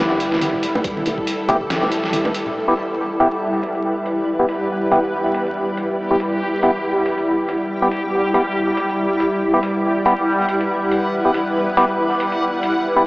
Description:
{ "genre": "deep dubstep", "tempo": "140 BPM", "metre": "4/4", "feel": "swing 56% on 16ths, half-time", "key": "E minor", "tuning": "A4 = 440 Hz", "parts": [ { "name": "granular cloud pad", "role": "sustained chords", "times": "0.0-13.1 s", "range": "G3 to B4", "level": "-20 LUFS", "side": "equal", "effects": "built-in reverb, analog chorus" }, { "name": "soft dub sub bass", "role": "bass", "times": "0.0-2.1 s", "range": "D1 to G1", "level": "-40 LUFS", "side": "equal", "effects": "none" }, { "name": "trip hop sampler-style drum kit", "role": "drums", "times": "0.2-12.7 s", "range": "hi-hat, snare drum", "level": "-28 LUFS", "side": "equal", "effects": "overdrive, low-pass filter on hats, low-pass filter on snare, low-pass filter on room" }, { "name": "bongos and congas", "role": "percussion", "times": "0.3-2.5 s", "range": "none", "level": "-27 LUFS", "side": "equal", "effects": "dub echo" }, { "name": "electronic kick drum", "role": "drums", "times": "0.8-1.6 s", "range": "none", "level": "-31 LUFS", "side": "equal", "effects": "overdrive" }, { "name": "percussive organ stab", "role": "stabs", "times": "1.5-13.0 s", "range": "B3 to G4", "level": "-21 LUFS", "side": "equal", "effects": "chorus, dub echo" }, { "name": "backwards swelling texture", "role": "texture", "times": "3.4-13.1 s", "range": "G3 to F#5", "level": "-25 LUFS", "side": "equal", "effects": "built-in reverb" } ], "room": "wet huge ambient reverb, RT60 4.6 s", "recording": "dreamy mix soaked in reverb, vinyl crackle, AM radio sound", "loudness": "-17 LUFS", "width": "side -22 dB against mid", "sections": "0.0-2.6 A section; 2.6-13.1 B section", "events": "none", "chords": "0.0 Em" }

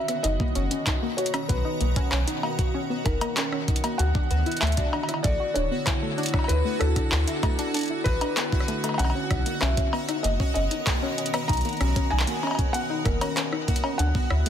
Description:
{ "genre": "IDM", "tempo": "96 BPM", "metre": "4/4", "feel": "straight", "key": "B major", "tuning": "A4 = 442 Hz", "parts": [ { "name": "felt-muted upright piano", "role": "melody", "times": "0.0-14.5 s", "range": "A4 to A#5", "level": "-31 LUFS", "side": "left 1 dB", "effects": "tape echo" }, { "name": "icy glass pad", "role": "sustained chords", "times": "0.0-14.5 s", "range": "B2 to A#5", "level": "-33 LUFS", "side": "right 1 dB", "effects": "chorus, built-in reverb" }, { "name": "pulsing gated texture", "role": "texture", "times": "0.0-14.5 s", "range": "F#4 to F#5", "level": "-36 LUFS", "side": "right 2 dB", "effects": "chorus, built-in reverb" }, { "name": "warbly dusty pluck", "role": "arpeggios", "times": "0.1-14.5 s", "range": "A3 to F#4", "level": "-31 LUFS", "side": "left 2 dB", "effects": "chorus, ping-pong delay" }, { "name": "booming analog drum machine", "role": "drums", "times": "0.1-14.5 s", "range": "cowbell, handclaps, hi-hat, rim click", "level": "-29 LUFS", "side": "left 1 dB", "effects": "none" }, { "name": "warm sub bass", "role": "bass", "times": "0.2-14.4 s", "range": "D1 to D2", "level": "-25 LUFS", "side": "equal", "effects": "none" }, { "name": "electronic kick drum", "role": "drums", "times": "0.4-14.3 s", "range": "none", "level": "-26 LUFS", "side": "equal", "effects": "none" } ], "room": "light reverb, digital ambience", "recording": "dense, heavily limited modern master", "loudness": "-22 LUFS", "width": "side -9 dB against mid", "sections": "0.0-14.5 A section", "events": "none", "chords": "0.0 Bmaj9; 4.0 D69; 9.0 Bmaj9" }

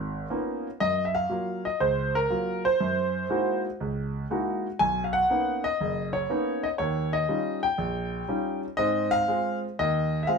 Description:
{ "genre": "jazz", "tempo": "120 BPM", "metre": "4/4", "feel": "swing 68% on 8ths", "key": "unclear", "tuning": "A4 = 440 Hz", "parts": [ { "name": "warm concert grand piano", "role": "solo", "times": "0.0-10.4 s", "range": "F#1 to Ab5", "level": "-24 LUFS", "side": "equal", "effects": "none" } ], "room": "moderate studio reverb, RT60 0.8 s", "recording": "band playing live in one room", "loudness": "-24 LUFS", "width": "side -5 dB against mid", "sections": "0.0-10.4 A section", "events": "none", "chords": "0.0 Db13; 0.8 Gbmaj7; 2.8 Gb13; 4.8 Bmaj9; 6.8 Eb9; 8.8 Ab6" }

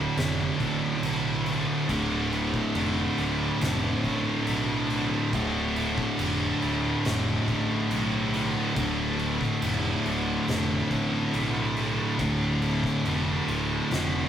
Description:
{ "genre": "stoner and doom metal", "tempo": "70 BPM", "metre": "4/4", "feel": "straight", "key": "D dorian", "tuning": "A4 = 440 Hz", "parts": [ { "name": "scooped high-gain guitar", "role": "riff", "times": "0.0-14.3 s", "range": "D2 to D3", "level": "-30 LUFS", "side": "left 1 dB", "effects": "distortion" }, { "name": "thick fuzz guitar", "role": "riff", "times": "0.0-14.3 s", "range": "D2 to D3", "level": "-32 LUFS", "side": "left 5 dB", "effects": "distortion" }, { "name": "thick fuzz guitar", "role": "riff", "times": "0.0-14.3 s", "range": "D2 to D3", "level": "-29 LUFS", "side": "right 4 dB", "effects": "distortion" }, { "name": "fuzz fingered electric bass", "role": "bass", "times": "0.0-14.2 s", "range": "D1 to B1", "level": "-34 LUFS", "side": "left 1 dB", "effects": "overdrive" }, { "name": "oversized low-tuned drum kit", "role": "drums", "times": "0.2-14.1 s", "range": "crash cymbal, kick drum, snare drum", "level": "-33 LUFS", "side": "equal", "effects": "none" } ], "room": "moderate stone room reverb, RT60 0.9 s", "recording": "rough rehearsal-room recording, warm saturation", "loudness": "-24 LUFS", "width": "side -9 dB against mid", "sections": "0.0-14.3 A section", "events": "none", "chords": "0.0 Dm" }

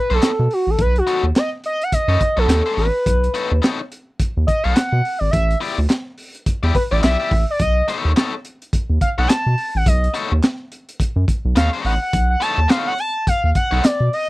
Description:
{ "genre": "funk", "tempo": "106 BPM", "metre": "4/4", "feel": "swing 60% on 16ths", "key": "B mixolydian", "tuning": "A4 = 440 Hz", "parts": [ { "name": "expressive portamento lead", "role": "melody", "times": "0.0-14.3 s", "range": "F#4 to A5", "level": "-20 LUFS", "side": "equal", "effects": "chorus" }, { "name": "biting overdriven guitar", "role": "accompaniment", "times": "0.1-13.8 s", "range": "B3 to D5", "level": "-24 LUFS", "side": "left 4 dB", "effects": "none" }, { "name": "round analog bass", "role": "bass", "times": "0.1-14.1 s", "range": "G#1 to B2", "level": "-18 LUFS", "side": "equal", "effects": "none" }, { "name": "crunchy breakbeat drum kit", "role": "drums", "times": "0.2-14.3 s", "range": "handclaps, hi-hat, kick drum, snare drum", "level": "-19 LUFS", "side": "equal", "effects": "none" } ], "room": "little or no reverb", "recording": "dry, close 1970s-style studio recording", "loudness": "-16 LUFS", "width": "side -19 dB against mid", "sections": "0.0-14.3 A section", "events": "analog synth lead solo 0.0-14.3", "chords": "0.0 B9; 5.3 A9sus4; 7.6 B9" }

